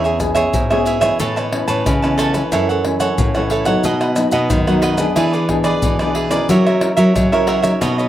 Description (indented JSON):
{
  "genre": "samba and choro",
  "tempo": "91 BPM",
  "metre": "4/4",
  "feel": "straight",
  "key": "E major",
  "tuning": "A4 = 441 Hz",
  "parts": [
    { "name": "cavaquinho", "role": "accompaniment", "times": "0.0-8.1 s", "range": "E4 to A5", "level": "-18 LUFS", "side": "right 3 dB", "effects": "slapback echo" },
    { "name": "nylon-string guitar", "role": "accompaniment", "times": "0.0-8.1 s", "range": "F#2 to A#4", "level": "-20 LUFS", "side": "left 1 dB", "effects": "none" },
    { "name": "nylon-string guitar", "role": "bass", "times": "0.0-8.1 s", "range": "E2 to F#3", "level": "-19 LUFS", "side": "equal", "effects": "none" },
    { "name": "maracas, pandeiro, surdo and tamborim", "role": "percussion", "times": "0.0-8.1 s", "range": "none", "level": "-22 LUFS", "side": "left 1 dB", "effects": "none" }
  ],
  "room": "little or no reverb",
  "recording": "recorded outdoors, with no room sound",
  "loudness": "-14 LUFS",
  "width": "side -12 dB against mid",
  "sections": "0.0-8.1 A section",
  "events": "none",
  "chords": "0.0 E6; 1.2 Aadd9; 2.5 F#m7; 3.8 B; 5.2 E7; 6.5 F#7"
}